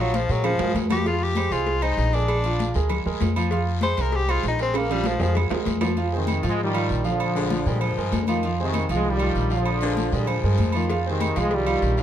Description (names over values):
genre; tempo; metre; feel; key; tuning
latin, salsa; 195 BPM; 4/4; straight; unclear; A4 = 440 Hz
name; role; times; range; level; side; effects
bright tenor saxophone; melody; 0.0-5.4 s; F3 to C5; -26 LUFS; left 4 dB; none
clear concert grand piano; accompaniment; 0.0-12.0 s; F3 to F5; -28 LUFS; right 4 dB; none
upright bass; bass; 0.0-12.0 s; Bb1 to Bb2; -25 LUFS; equal; none
congas; percussion; 0.1-12.0 s; none; -30 LUFS; left 5 dB; none
cowbell and bongos; percussion; 0.1-5.9, 10.9-12.0 s; none; -33 LUFS; left 3 dB; none
guiro; percussion; 0.1-12.0 s; none; -40 LUFS; left 8 dB; none
timbales and agogo bells; percussion; 0.4-11.8 s; none; -31 LUFS; right 7 dB; none
bright trombone section; melody; 6.1-12.0 s; C3 to Ab3; -26 LUFS; equal; none
breathy baritone saxophone; second line; 7.4-11.0 s; D3 to G3; -31 LUFS; left 5 dB; none
room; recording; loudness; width
light reverb; dark, warm production; -20 LUFS; side -10 dB against mid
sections
0.0-6.0 A section; 6.0-12.0 B section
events
tenor saxophone solo 0.0-6.0; drum fill 0.4-1.1, 4.7-6.0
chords
0.0 Bb5; 1.1 Fm7; 2.3 Bb7; 3.5 Fm; 4.7 Bb5; 6.0 Fm7; 7.2 Bb7; 8.4 Fm7; 9.7 Bb7; 10.9 Fm7